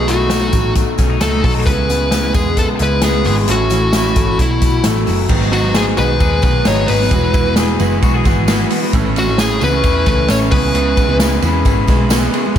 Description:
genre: jangly indie pop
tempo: 132 BPM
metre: 4/4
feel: straight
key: C# minor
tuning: A4 = 438 Hz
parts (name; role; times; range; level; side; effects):
- fuzz lead guitar; melody; 0.0-11.2 s; E4 to C#5; -18 LUFS; equal; distortion, slapback echo, ping-pong delay
- picked steel-string acoustic guitar; accompaniment; 0.0-12.6 s; G#2 to F#4; -21 LUFS; right 6 dB; slapback echo
- electric guitar through a small old amp; arpeggios; 0.0-12.6 s; G#2 to G#4; -20 LUFS; left 5 dB; warbly pitch drift, slapback echo
- vintage muted picked electric bass; bass; 0.0-12.6 s; E1 to E2; -18 LUFS; equal; none
- vintage drum kit; drums; 0.1-12.6 s; crash cymbal, hi-hat, kick drum, ride cymbal, snare drum; -17 LUFS; equal; none
- tambourine; percussion; 0.1-12.6 s; none; -32 LUFS; right 7 dB; none
room: moderate lush hall reverb, RT60 1.8 s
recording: big arena sound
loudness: -12 LUFS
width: side -10 dB against mid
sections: 0.0-5.3 A section; 5.3-12.6 B section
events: none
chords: 0.0 B7; 1.7 C#m7; 3.5 A; 4.4 B7sus4; 5.3 G#m7; 7.1 Eadd9; 8.9 A; 10.5 C#m7

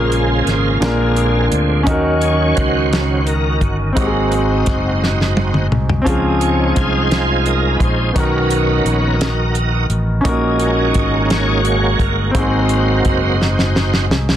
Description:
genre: slow gospel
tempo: 57 BPM (dotted quarters)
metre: 6/8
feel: straight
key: unclear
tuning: A4 = 440 Hz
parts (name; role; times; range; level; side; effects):
- clear concert grand piano; accompaniment; 0.0-14.4 s; Ab2 to Bb4; -19 LUFS; left 1 dB; none
- bright tonewheel organ; sustained chords; 0.0-14.1 s; Db3 to Db5; -19 LUFS; right 3 dB; slow rotary speaker, overdrive, chorus vibrato
- fingered electric bass; bass; 0.0-14.4 s; Gb1 to Eb2; -18 LUFS; equal; none
- warm soul drum kit; drums; 0.1-14.4 s; hi-hat, kick drum, snare drum, toms; -19 LUFS; equal; none
room: light reverb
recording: dense, heavily limited modern master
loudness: -13 LUFS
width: side -11 dB against mid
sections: 0.0-14.4 A section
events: tonewheel organ solo 0.0-14.4; drum fill 5.0-6.1, 13.4-14.4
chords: 0.0 Bbm7; 0.8 Bb7; 1.9 Ebm7; 4.0 Ab7; 6.1 Dbmaj7; 8.2 Cbmaj7; 10.3 Gb6; 12.3 Ab7

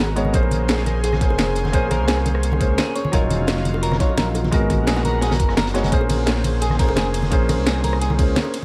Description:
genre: liquid drum and bass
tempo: 172 BPM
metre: 4/4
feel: straight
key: Bb minor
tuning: A4 = 442 Hz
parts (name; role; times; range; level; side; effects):
- felt-muted upright piano; accompaniment; 0.0-8.6 s; Gb3 to Db5; -27 LUFS; equal; dub echo
- airy breathy pad; sustained chords; 0.0-8.6 s; Gb3 to C5; -31 LUFS; equal; chorus, sidechain pumping
- semi-hollow electric guitar; arpeggios; 0.0-8.1 s; Ab4 to Db5; -31 LUFS; equal; vintage 12-bit sampler grit, dub echo
- smooth gliding synth bass; bass; 0.0-8.3 s; Eb1 to Db2; -24 LUFS; equal; none
- crunchy breakbeat drum kit; drums; 0.0-8.6 s; hi-hat, snare drum; -34 LUFS; equal; high-pass filter on hats, high-pass filter on snare, high-pass filter on room
- drum and bass drum kit; drums; 0.2-8.6 s; hi-hat, ride cymbal, rim click, snare drum; -27 LUFS; equal; none
- congas and bongos; percussion; 0.2-8.6 s; none; -30 LUFS; equal; none
- electronic kick drum; drums; 0.3-8.3 s; none; -22 LUFS; equal; none
room: light reverb, small room ambience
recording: none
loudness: -19 LUFS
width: mono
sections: 0.0-8.6 A section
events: none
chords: 0.3 Bbm9; 3.0 Ebm9; 4.5 Abm9; 5.9 Bbm9

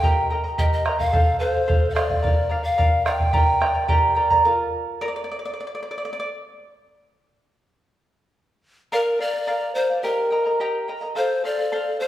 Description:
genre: andean folk, Andean ensemble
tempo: 108 BPM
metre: 2/4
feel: straight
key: unclear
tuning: A4 = 440 Hz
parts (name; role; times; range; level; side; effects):
- mellow hollow pan flute; melody; 0.0-4.1, 8.9-12.1 s; Bb4 to G5; -23 LUFS; left 1 dB; none
- charango; accompaniment; 0.0-6.3, 8.9-12.1 s; F4 to Bb5; -23 LUFS; right 1 dB; none
- bombo; percussion; 0.0-4.4 s; none; -22 LUFS; equal; none
room: wet recital hall reverb, RT60 1.6 s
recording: recorded in a church or concert hall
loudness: -19 LUFS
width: side -13 dB against mid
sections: 0.0-4.5 A section; 4.5-8.9 B section; 8.9-12.1 C section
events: charango solo 4.5-8.9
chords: 0.0 Eb; 1.1 F; 2.2 Bb; 3.3 Gm; 4.5 Bb5; 5.6 N.C.; 8.9 Bb; 10.0 Eb; 11.2 F

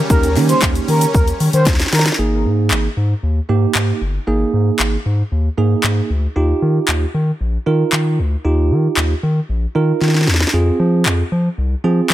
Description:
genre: dance-pop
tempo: 115 BPM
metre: 4/4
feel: straight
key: Ab major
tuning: A4 = 439 Hz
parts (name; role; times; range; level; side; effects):
- supersaw chords; sustained chords; 0.0-2.2 s; Db3 to Db4; -26 LUFS; equal; sidechain pumping
- expressive synth lead; melody; 0.1-2.0 s; Bb4 to C5; -20 LUFS; equal; chorus, sidechain pumping, ping-pong delay
- bell-like tine electric piano; accompaniment; 0.1-12.1 s; Bb3 to Bb4; -19 LUFS; right 5 dB; auto-pan, sidechain pumping
- round analog bass; bass; 0.1-12.1 s; G1 to F3; -16 LUFS; left 1 dB; sidechain pumping
- house drum kit; drums; 0.1-12.1 s; handclaps, hi-hat, kick drum, shaker, snare drum; -18 LUFS; left 1 dB; overdrive
- group handclap; percussion; 0.4-1.8 s; none; -31 LUFS; left 8 dB; none
room: little or no reverb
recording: none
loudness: -14 LUFS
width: side -14 dB against mid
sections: 0.0-2.2 A section; 2.2-12.1 B section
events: drop 0.0-2.2; drum fill 1.7-2.2, 10.0-10.5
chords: 0.0 Eb7; 2.2 Absus2; 6.4 Ebadd9; 10.5 Fm

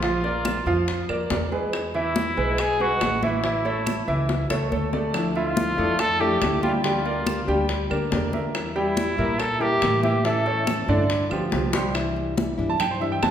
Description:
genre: latin, Cuban son and guajira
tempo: 141 BPM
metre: 4/4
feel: straight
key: unclear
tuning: A4 = 440 Hz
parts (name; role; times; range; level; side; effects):
- warm trumpet; melody; 0.0-11.1 s; E4 to A4; -25 LUFS; equal; none
- bright baby grand piano; arpeggios; 0.0-13.3 s; D3 to A5; -25 LUFS; right 2 dB; none
- upright bass; bass; 0.0-13.3 s; A1 to Bb2; -29 LUFS; equal; none
- bongos; percussion; 0.0-13.3 s; none; -32 LUFS; left 4 dB; none
- congas; percussion; 0.0-13.3 s; none; -30 LUFS; left 1 dB; none
- claves; percussion; 0.5-13.3 s; none; -36 LUFS; right 4 dB; none
- nylon-string guitar; accompaniment; 5.1-13.3 s; C3 to G4; -28 LUFS; left 3 dB; none
room: wet recital hall reverb, RT60 1.4 s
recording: recorded in a church or concert hall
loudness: -21 LUFS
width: side -9 dB against mid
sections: 0.0-12.0 A section; 12.0-13.3 B section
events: drum fill 4.3-5.1, 11.7; grand piano solo 12.0-13.3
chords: 0.0 Bb; 1.7 E; 3.4 A; 5.1 Dmadd9; 6.8 Gm/D; 8.5 Edim; 10.3 A; 11.1 G7; 12.0 Cadd9

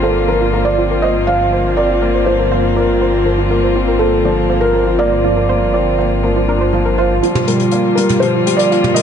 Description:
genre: piano and strings electronica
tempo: 121 BPM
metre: 4/4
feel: straight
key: unclear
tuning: A4 = 440 Hz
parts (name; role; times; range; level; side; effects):
- felt-muted upright piano; melody; 0.0-9.0 s; A4 to F5; -17 LUFS; right 1 dB; none
- muted string quartet; sustained chords; 0.0-9.0 s; D3 to F4; -22 LUFS; left 1 dB; none
- soft round pluck; arpeggios; 0.0-9.0 s; F4 to D5; -21 LUFS; right 3 dB; chorus, digital delay
- dark upright piano; riff; 0.0-9.0 s; F3 to F4; -16 LUFS; left 1 dB; digital delay
- dark detuned saw bass; bass; 0.0-7.2 s; G1; -19 LUFS; equal; none
- jazz brush drum kit; drums; 7.2-9.0 s; hi-hat, toms; -19 LUFS; right 2 dB; none
room: moderate lush hall reverb, RT60 1.8 s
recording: nothing above 10.3 kHz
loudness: -12 LUFS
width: side -8 dB against mid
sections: 0.0-7.2 A section; 7.2-9.0 B section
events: filter sweep on upright piano 0.0-7.2; filter sweep on synth arpeggio sound 0.0-7.2; build-up 7.2-9.0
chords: 0.0 Bbadd9/G; 7.2 Gm7

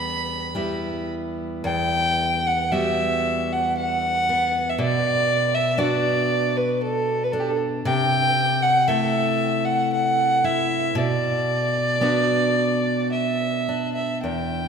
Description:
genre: celtic folk, Celtic slow air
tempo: 53-61 BPM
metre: 3/4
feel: rubato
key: E minor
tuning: A4 = 441 Hz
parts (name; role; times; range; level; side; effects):
- dark fiddle; melody; 0.0-14.7 s; G4 to B5; -21 LUFS; right 1 dB; none
- fingerpicked steel-string acoustic guitar; accompaniment; 0.0-14.7 s; E2 to A4; -24 LUFS; left 1 dB; none
room: wet church reverb, RT60 2.7 s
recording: minimal, uncompressed stereo recording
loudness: -20 LUFS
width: side -6 dB against mid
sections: 0.0-1.6 A section; 1.6-14.2 B section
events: none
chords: 0.0 Em; 1.6 Emadd9; 4.8 Bm; 7.8 Am/C; 10.9 Bm

